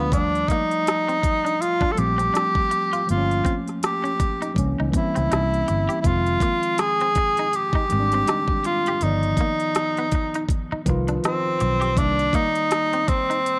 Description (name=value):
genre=R&B, neo-soul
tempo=81 BPM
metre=4/4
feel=swing 58% on 16ths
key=C dorian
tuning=A4 = 440 Hz
part: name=breathy tenor saxophone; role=melody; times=0.0-13.6 s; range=Cb4 to A4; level=-24 LUFS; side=equal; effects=none
part: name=semi-hollow electric guitar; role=second line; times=0.0-13.4 s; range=Bb3 to G4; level=-35 LUFS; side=equal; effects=none
part: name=mellow tine electric piano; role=accompaniment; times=0.0-13.6 s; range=D3 to D5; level=-30 LUFS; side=equal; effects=none
part: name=vintage muted fingered electric bass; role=bass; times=0.0-12.3 s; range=F1 to Eb2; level=-27 LUFS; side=equal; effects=none
part: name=pop drum kit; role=drums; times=0.1-13.6 s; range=hi-hat, kick drum, rim click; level=-28 LUFS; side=equal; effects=none
room=light reverb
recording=none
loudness=-22 LUFS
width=mono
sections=0.0-13.6 A section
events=none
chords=0.1 Ebmaj9#11; 3.1 Gm7b5; 4.6 C7b9; 6.0 Fm7; 9.0 G7b13 (rootless); 12.0 Cm9